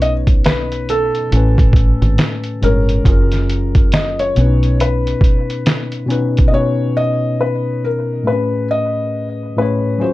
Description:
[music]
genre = lo-fi hip hop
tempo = 69 BPM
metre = 4/4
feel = swing 60% on 16ths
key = B major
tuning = A4 = 440 Hz
[part]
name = felt-muted upright piano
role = melody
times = 0.0-10.1 s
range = A4 to D#5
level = -20 LUFS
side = left 1 dB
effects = tape echo
[part]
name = tine electric piano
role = accompaniment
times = 0.0-10.1 s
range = A2 to G#5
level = -19 LUFS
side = left 2 dB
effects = none
[part]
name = deep dub fingered electric bass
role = bass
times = 0.0-5.1 s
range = F#1 to B1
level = -16 LUFS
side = equal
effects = none
[part]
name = lo-fi sampler-style drum kit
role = drums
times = 0.0-6.5 s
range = hi-hat, kick drum, snare drum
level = -14 LUFS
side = equal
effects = vintage 12-bit sampler grit
[sound]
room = light reverb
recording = dark, warm production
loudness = -13 LUFS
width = side -17 dB against mid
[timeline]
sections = 0.0-6.5 A section; 6.5-10.1 B section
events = none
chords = 0.0 Badd9; 1.3 Amaj9; 3.1 F#maj9; 4.4 Badd9; 8.3 Amaj9

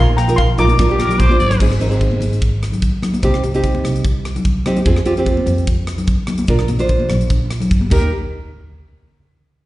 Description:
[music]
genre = calypso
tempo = 147 BPM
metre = 4/4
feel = swing 53% on 16ths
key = unclear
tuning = A4 = 440 Hz
[part]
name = steel pan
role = melody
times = 0.0-1.3 s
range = F5 to D6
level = -19 LUFS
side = left 4 dB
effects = slapback echo
[part]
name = nylon-string guitar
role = accompaniment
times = 0.0-8.1 s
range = C4 to C5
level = -19 LUFS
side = right 2 dB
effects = slapback echo
[part]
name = upright bass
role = bass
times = 0.0-8.1 s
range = Ab1 to G2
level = -17 LUFS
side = equal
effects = none
[part]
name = tight metal drum kit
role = drums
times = 0.2-8.0 s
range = crash cymbal, hi-hat, kick drum, rim click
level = -20 LUFS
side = equal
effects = none
[part]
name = congas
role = percussion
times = 0.6-8.1 s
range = none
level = -22 LUFS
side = left 1 dB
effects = none
[part]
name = growling trumpet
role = second line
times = 1.0-1.6, 7.9-8.1 s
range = Bb4 to D5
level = -23 LUFS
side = equal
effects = slapback echo
[sound]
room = light reverb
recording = live gig heard through the venue's PA, recital hall reverb, nothing above 10.8 kHz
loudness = -14 LUFS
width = side -17 dB against mid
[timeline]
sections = 0.0-1.6 A section; 1.6-8.1 B section; 8.1-9.7 C section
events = drum fill 1.2-1.6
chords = 0.0 Bbsus4; 0.8 Bb; 1.6 Ab; 3.2 Cm; 4.9 F5; 6.5 Bb; 7.9 Eb; 8.1 N.C.

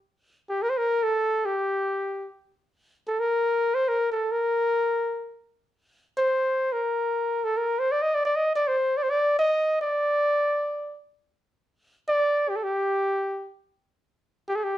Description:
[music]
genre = arabic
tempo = 106 BPM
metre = 3/4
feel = straight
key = G minor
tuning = A4 = 440 Hz
[part]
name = warm flugelhorn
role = solo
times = 0.5-14.8 s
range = G4 to Eb5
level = -23 LUFS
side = equal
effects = slapback echo
[sound]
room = moderate studio reverb, RT60 0.6 s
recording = close, detailed microphones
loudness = -23 LUFS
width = side -13 dB against mid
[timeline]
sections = 0.1-13.6 A section; 13.6-14.8 B section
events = none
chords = none

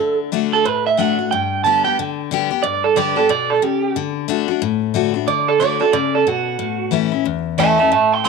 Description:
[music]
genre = rock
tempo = 182 BPM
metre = 4/4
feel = swing 61% on 8ths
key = D major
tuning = A4 = 437 Hz
[part]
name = electric guitar through a small old amp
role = melody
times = 0.0-8.3 s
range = F#4 to C6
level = -16 LUFS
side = right 7 dB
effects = tape echo
[part]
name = picked steel-string acoustic guitar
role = accompaniment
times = 0.0-8.3 s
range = E2 to G4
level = -20 LUFS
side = left 14 dB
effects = none
[sound]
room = light reverb, small room ambience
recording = 1960s-style stereo with parts hard left and right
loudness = -15 LUFS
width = side -4 dB against mid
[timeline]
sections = 0.0-8.3 A section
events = clean electric guitar solo 0.0-8.3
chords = 0.0 D; 1.3 G; 4.0 D; 6.6 A

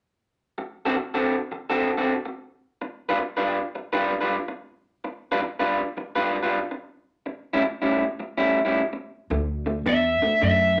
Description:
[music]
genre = blues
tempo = 108 BPM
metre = 4/4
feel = swing 65% on 8ths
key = unclear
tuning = A4 = 440 Hz
[part]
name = electric guitar through a small old amp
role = riff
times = 0.6-10.8 s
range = A2 to B4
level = -26 LUFS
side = equal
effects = none
[part]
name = upright bass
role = bass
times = 9.3-10.8 s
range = D2 to F#2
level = -28 LUFS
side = equal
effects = none
[part]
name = lead guitar through a small cranked amp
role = melody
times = 9.9-10.8 s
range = E5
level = -22 LUFS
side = equal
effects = overdrive
[sound]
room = wet club reverb, RT60 0.7 s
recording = nothing above 10.7 kHz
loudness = -25 LUFS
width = mono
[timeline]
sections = 0.4-9.3 A section; 9.3-10.8 B section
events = none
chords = 0.4 D7; 2.6 G7; 7.1 A7; 9.3 D

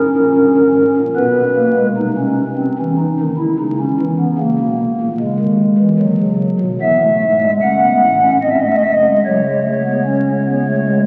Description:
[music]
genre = classical, baroque-style 3-part fugue for pipe organ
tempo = 74 BPM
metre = 3/4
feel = straight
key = C# minor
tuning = A4 = 437 Hz
[part]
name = pipe organ, stopped flute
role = solo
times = 0.0-11.1 s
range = F#1 to F#5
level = -15 LUFS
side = equal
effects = none
[sound]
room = wet church reverb, RT60 3.8 s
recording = very old 78 rpm record, vinyl crackle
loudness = -15 LUFS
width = mono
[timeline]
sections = 0.0-2.0 A section; 2.0-11.1 B section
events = none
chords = 0.0 D#7 (rootless); 1.2 G#m/B; 2.0 Cm; 3.6 C#m; 4.4 C#m13; 6.0 B; 6.8 A5; 7.6 F#madd11; 8.4 G#7; 9.2 C#5

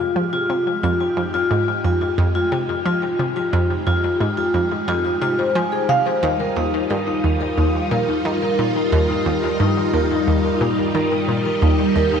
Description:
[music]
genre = ambient, sequencer-driven space music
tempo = 89 BPM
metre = 4/4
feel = straight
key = F minor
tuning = A4 = 443 Hz
[part]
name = string machine, full ensemble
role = sustained chords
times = 0.0-12.2 s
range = G3 to G4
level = -24 LUFS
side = equal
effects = phaser, ensemble chorus
[part]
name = vibraphone with medium mallets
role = arpeggios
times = 0.0-12.2 s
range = Eb4 to Ab5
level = -20 LUFS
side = left 1 dB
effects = auto-pan, ping-pong delay
[part]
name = analog pluck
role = riff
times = 0.0-12.2 s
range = Eb2 to F3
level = -21 LUFS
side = right 1 dB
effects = chorus, ping-pong delay
[sound]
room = wet huge ambient reverb, RT60 7.8 s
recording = none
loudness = -17 LUFS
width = side -7 dB against mid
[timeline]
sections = 0.0-12.2 A section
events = fade-in on string machine 0.0-12.2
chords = 0.0 Fmadd9; 6.2 Ebadd9

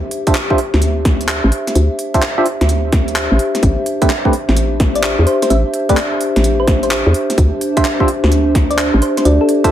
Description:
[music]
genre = UK garage, two-step garage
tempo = 128 BPM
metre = 4/4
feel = swing 66% on 16ths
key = unclear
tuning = A4 = 441 Hz
[part]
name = warbly tape-like pad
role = texture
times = 0.0-9.7 s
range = D4 to E5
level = -19 LUFS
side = equal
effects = chorus, built-in reverb, sidechain pumping
[part]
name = garage drum kit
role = drums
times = 0.1-9.7 s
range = handclaps, hi-hat, snare drum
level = -20 LUFS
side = equal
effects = none
[part]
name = percussive organ stab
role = stabs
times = 0.3-9.7 s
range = A3 to E5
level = -17 LUFS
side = right 1 dB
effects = chorus, digital delay
[part]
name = electronic kick drum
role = drums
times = 0.3-9.7 s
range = none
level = -16 LUFS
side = equal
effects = none
[part]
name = hollow knocking FM bass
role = bass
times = 0.7-9.4 s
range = A1 to E2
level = -15 LUFS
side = equal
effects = tube saturation
[part]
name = thumb-piano-like synth pluck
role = melody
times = 4.0-9.7 s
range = A4 to E5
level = -20 LUFS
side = left 1 dB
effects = chorus, phaser, digital delay
[sound]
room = moderate studio ambience, RT60 0.5 s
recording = none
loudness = -12 LUFS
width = side -11 dB against mid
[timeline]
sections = 0.0-9.7 A section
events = filter sweep on synth stab 0.0-9.7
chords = 0.0 Dm11; 3.6 Am11; 7.1 Dm11

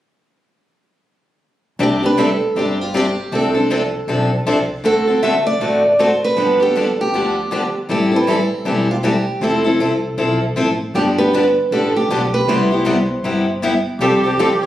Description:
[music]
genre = acoustic string swing (jazz manouche)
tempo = 157 BPM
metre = 4/4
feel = swing 61% on 8ths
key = C major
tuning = A4 = 440 Hz
[part]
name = picked steel-string acoustic guitar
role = melody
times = 1.8-14.7 s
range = F4 to E5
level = -18 LUFS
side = right 2 dB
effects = plate reverb
[part]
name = picked steel-string acoustic guitar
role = accompaniment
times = 1.8-14.5 s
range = C3 to A4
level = -17 LUFS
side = left 2 dB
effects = none
[part]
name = upright bass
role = bass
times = 1.8-14.7 s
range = E1 to E2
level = -26 LUFS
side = equal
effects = none
[part]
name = musette accordion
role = second line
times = 14.0-14.7 s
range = G4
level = -17 LUFS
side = right 3 dB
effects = none
[sound]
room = moderate studio ambience, RT60 0.5 s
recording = recorded on a phone in the room, studio reverb, compression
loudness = -14 LUFS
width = side -13 dB against mid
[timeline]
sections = 1.8-14.0 A section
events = none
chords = 1.8 Csus2; 3.3 F6/C; 4.8 D7; 6.4 G7; 7.9 Am7; 9.4 Fmaj7; 10.9 G7; 12.5 Cmaj7; 14.0 Fadd9

